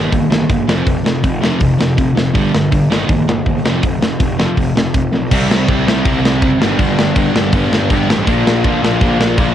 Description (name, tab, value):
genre	punk rock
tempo	162 BPM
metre	4/4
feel	straight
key	unclear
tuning	A4 = 440 Hz
part	sludgy distorted guitar	riff	0.0-9.5 s	F2 to G4	-19 LUFS	left 8 dB	overdrive, cassette tape
part	sludgy distorted guitar	riff	0.0-9.5 s	F2 to Eb4	-18 LUFS	right 8 dB	overdrive, cassette tape
part	fuzz picked electric bass	bass	0.0-9.5 s	F1 to C2	-21 LUFS	equal	overdrive
part	tight metal drum kit	drums	0.1-9.5 s	crash cymbal, hi-hat, kick drum, snare drum	-16 LUFS	equal	none
part	fuzz guitar	riff	5.3-9.5 s	G2 to E4	-19 LUFS	left 1 dB	distortion, cassette tape
room	little or no reverb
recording	home recording on cassette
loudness	-12 LUFS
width	side -10 dB against mid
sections	0.0-5.3 A section; 5.3-9.5 B section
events	drum fill 5.1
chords	0.0 Eb/G; 0.7 F5; 2.3 G5; 2.9 Eb/G; 3.6 F5; 5.3 C; 6.6 G; 8.3 Bb